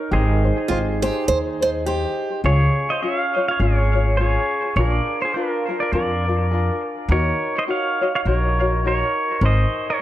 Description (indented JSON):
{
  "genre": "Hawaiian",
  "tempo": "103 BPM",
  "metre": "4/4",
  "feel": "swing 58% on 8ths",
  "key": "Db major",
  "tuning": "A4 = 442 Hz",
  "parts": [
    { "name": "pedal steel guitar", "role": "melody", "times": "0.0-10.0 s", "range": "Eb4 to F5", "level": "-22 LUFS", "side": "right 2 dB", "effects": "analog delay" },
    { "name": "tenor ukulele", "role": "accompaniment", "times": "0.0-10.0 s", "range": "Db4 to Db5", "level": "-25 LUFS", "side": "left 3 dB", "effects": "analog delay" },
    { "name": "upright bass", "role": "bass", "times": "0.1-9.6 s", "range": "Ab1 to F2", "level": "-20 LUFS", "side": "equal", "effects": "none" },
    { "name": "picked steel-string acoustic guitar", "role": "second line", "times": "0.7-2.4 s", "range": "F4 to C5", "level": "-23 LUFS", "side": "right 3 dB", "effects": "none" }
  ],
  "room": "moderate spring reverb, RT60 1.5 s, studio reverb",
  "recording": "echo-heavy mix",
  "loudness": "-18 LUFS",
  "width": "side -13 dB against mid",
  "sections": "0.0-2.4 A section; 2.4-10.0 B section",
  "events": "none",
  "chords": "0.1 Abmaj7; 2.4 Db; 4.8 Bb7; 7.1 Ebm7; 9.4 Abadd9",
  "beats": "| 0.12 0.70 1.28 1.86 | 2.44 3.03 3.61 4.19 | 4.77 5.35 5.93 6.52 | 7.10 7.68 8.26 8.84 | 9.42 10.00"
}